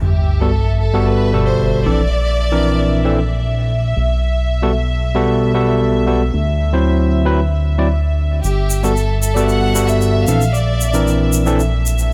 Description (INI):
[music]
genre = nu-disco, nu disco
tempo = 114 BPM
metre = 4/4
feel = straight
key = G major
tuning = A4 = 440 Hz
[part]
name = rich chamber violin section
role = melody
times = 0.0-3.4, 8.4-11.3 s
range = G4 to F#5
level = -25 LUFS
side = equal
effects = tape echo
[part]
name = warm studio string section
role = sustained chords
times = 0.0-12.1 s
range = E5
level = -29 LUFS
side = equal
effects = none
[part]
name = fat analog bass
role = bass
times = 0.0-12.1 s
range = G1 to D2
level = -19 LUFS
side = equal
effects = none
[part]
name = sub drop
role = sound effects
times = 0.0-2.1 s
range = none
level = -21 LUFS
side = equal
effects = none
[part]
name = overdriven tine electric piano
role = accompaniment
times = 0.4-11.6 s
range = B2 to D5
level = -20 LUFS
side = equal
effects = digital delay
[part]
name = tube shaker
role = percussion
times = 8.4-12.1 s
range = none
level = -28 LUFS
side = equal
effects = none
[sound]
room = light reverb, studio reverb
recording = none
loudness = -16 LUFS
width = mono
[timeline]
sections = 0.0-12.1 A section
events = impact 0.0-2.1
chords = 0.0 Gmaj9; 1.9 Bbmaj9#11; 4.0 Gmaj9/B; 6.3 D9; 8.4 Gmaj9; 10.3 Bbmaj9#11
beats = | 0.02 0.54 1.07 1.60 | 2.12 2.65 3.18 3.70 | 4.23 4.75 5.28 5.81 | 6.33 6.86 7.39 7.91 | 8.44 8.96 9.49 10.02 | 10.54 11.07 11.60 12.12